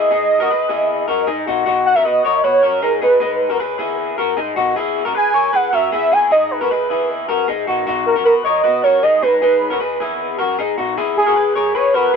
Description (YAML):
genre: indie pop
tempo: 155 BPM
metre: 4/4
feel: straight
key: G# minor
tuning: A4 = 440 Hz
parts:
  - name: warm velvety synth lead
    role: melody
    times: 0.0-12.2 s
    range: G#4 to G#5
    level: -15 LUFS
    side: right 2 dB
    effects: chorus, tape echo
  - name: electric guitar through a small old amp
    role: arpeggios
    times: 0.0-12.2 s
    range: D#4 to C#5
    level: -18 LUFS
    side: left 4 dB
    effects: wide subtle chorus, tape echo
room: light reverb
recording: dry, close 1970s-style studio recording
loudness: -14 LUFS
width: side -6 dB against mid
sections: 0.0-12.2 A section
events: none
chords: 0.1 G#m; 1.7 D#m7; 3.0 G#m; 4.6 E; 6.3 G#m; 7.9 D#m7; 9.2 G#m; 10.8 Emaj7